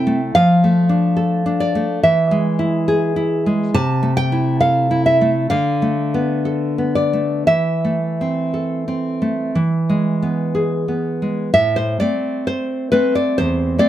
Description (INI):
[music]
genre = romantic piece for solo classical guitar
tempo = 55-73 BPM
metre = 4/4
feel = rubato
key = A minor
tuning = A4 = 440 Hz
[part]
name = nylon-string guitar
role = solo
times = 0.0-13.9 s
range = E2 to A5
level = -15 LUFS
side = equal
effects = none
[sound]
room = moderate studio reverb, RT60 0.8 s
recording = none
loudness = -15 LUFS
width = side -12 dB against mid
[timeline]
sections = 0.0-11.5 A section; 11.5-13.9 B section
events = none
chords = 0.3 Dm/F; 2.0 E; 3.8 Am/C; 5.5 Bm7b5/D; 7.5 Am/E; 9.5 E; 11.5 Am